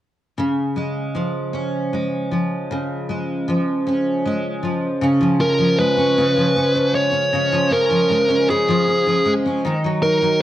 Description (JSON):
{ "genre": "pop", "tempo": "52 BPM (dotted quarters)", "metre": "6/8", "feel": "straight", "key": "unclear", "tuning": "A4 = 440 Hz", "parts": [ { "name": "picked steel-string acoustic guitar", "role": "accompaniment", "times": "0.4-10.4 s", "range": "Db3 to Eb4", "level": "-19 LUFS", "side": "equal", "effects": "double-tracked left and right" }, { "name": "fuzz lead guitar", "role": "melody", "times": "5.4-10.4 s", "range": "Ab4 to Db5", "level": "-17 LUFS", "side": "equal", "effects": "distortion" } ], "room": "moderate echo chamber reverb, RT60 1.6 s, studio reverb", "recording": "worn, warbling old tape, cassette tape, warbly pitch drift", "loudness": "-17 LUFS", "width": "side -13 dB against mid", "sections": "0.4-5.0 A section; 5.0-10.4 B section", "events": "none", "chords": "0.4 Db; 9.6 Ebm", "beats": "| 0.37 1.53 | 2.69 3.85 | 5.01 6.16 | 7.32 8.48 | 9.63" }